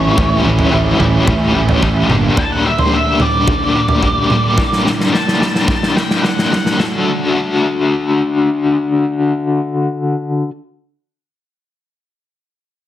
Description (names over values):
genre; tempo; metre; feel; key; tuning
indie rock; 109 BPM; 4/4; straight; D major; A4 = 438 Hz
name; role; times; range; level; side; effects
octave-fuzz lead guitar; melody; 0.0-6.8 s; C5 to A5; -20 LUFS; right 1 dB; distortion, analog delay
biting overdriven guitar; riff; 0.0-10.5 s; G2 to A4; -15 LUFS; left 3 dB; tremolo
fuzz guitar; riff; 0.0-2.4 s; G2 to E4; -19 LUFS; right 6 dB; distortion, analog chorus, analog delay
fuzz fingered electric bass; bass; 0.0-2.3 s; G1 to A1; -16 LUFS; equal; overdrive
big rock drum kit; drums; 0.2-6.9 s; kick drum, snare drum, toms; -16 LUFS; right 1 dB; none
room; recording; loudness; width
moderate studio reverb, RT60 0.7 s; heavily compressed radio sound, multiband compression; -12 LUFS; side -12 dB against mid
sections
0.0-6.8 A section; 6.8-9.0 B section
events
lead electric guitar solo 0.0-6.8; drum fill 4.6-6.8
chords
0.0 A7; 2.1 Gm; 6.8 D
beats
| 0.17 0.72 1.27 1.82 | 2.37 2.92 3.48 4.03 | 4.58 5.13 5.68 6.23 | 6.79 7.34 7.89 8.44